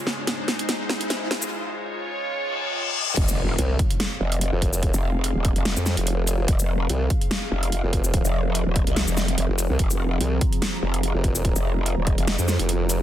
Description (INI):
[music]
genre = heavy wobble dubstep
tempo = 145 BPM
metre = 4/4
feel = swing 54% on 16ths, half-time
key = F minor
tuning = A4 = 440 Hz
[part]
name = evolving wavetable pad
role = sustained chords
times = 0.0-13.0 s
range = Ab2 to Bb5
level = -30 LUFS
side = equal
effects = chorus, built-in reverb, sidechain pumping
[part]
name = riser, reverse cymbal and impact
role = sound effects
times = 0.0-4.8 s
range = none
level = -29 LUFS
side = left 1 dB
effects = none
[part]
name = dubstep drum kit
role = drums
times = 0.1-13.0 s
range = crash cymbal, hi-hat, shaker, snare drum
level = -27 LUFS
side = equal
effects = none
[part]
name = growl bass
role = bass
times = 3.2-12.4 s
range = Eb1 to C2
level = -24 LUFS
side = equal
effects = chorus, overdrive
[part]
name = electronic kick drum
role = drums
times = 3.2-12.2 s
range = none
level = -23 LUFS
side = equal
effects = none
[part]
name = formant-sweep wobble bass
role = bass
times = 3.6-13.0 s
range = F1 to F2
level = -23 LUFS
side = equal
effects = chorus, overdrive
[sound]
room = little or no reverb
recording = dense, heavily limited modern master, high-pass filter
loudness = -21 LUFS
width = side -12 dB against mid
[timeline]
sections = 0.0-3.2 A section; 3.2-13.0 B section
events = build-up 0.0-3.2; drum fill 0.0-1.5; riser 0.0-1.5; filter sweep 0.0-3.2; reverse cymbal 2.5-3.2; drop 3.2-13.0; impact 3.2-4.8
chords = 0.0 Ab; 1.5 Db; 3.2 Fm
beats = 0.28 0.69 1.10 | 1.52 1.93 2.34 2.76 | 3.17 3.58 4.00 4.41 | 4.83 5.24 5.65 6.07 | 6.48 6.90 7.31 7.72 | 8.14 8.55 8.96 9.38 | 9.79 10.21 10.62 11.03 | 11.45 11.86 12.28 12.69